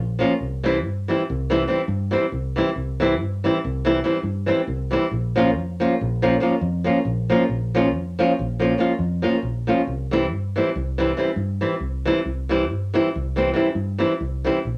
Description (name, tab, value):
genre	balkan folk, Balkan wedding band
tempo	278 BPM (eighths)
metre	11/8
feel	straight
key	unclear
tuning	A4 = 441 Hz
part	fingered electric bass	bass	0.0-14.8 s	Bb1 to G2	-28 LUFS	equal	none
part	flamenco guitar	accompaniment	0.2-14.6 s	E3 to F4	-22 LUFS	equal	none
room	wet studio reverb, RT60 0.5 s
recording	none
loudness	-22 LUFS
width	mono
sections	0.4-14.8 A section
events	none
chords	0.4 C; 5.1 Bbm; 9.9 C